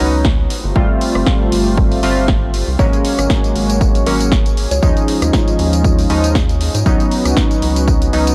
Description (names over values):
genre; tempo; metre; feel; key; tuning
deep house; 118 BPM; 4/4; swing 55% on 16ths; unclear; A4 = 441 Hz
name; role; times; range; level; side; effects
warm analog pad; sustained chords; 0.0-8.3 s; A3 to D#5; -27 LUFS; equal; chorus, vintage 12-bit sampler grit, sidechain pumping
chorused polysynth; stabs; 0.0-8.3 s; E#3 to F4; -20 LUFS; equal; sidechain pumping, analog delay
rubbery square bass; bass; 0.0-8.3 s; G1 to G#2; -21 LUFS; equal; sidechain pumping
house drum kit; drums; 0.0-8.3 s; hi-hat, rim click, snare drum, tambourine; -25 LUFS; equal; none
electronic kick drum; drums; 0.2-8.0 s; none; -18 LUFS; equal; none
kalimba; melody; 2.8-5.5 s; E#4 to C#5; -28 LUFS; equal; tape echo
room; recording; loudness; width
little or no reverb; dry, gritty hardware recording, cassette tape; -15 LUFS; mono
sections
0.0-8.3 A section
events
none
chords
0.0 C#9sus4; 0.5 G9sus4; 2.8 G#9sus4; 4.8 D#9sus4; 6.9 C#9sus4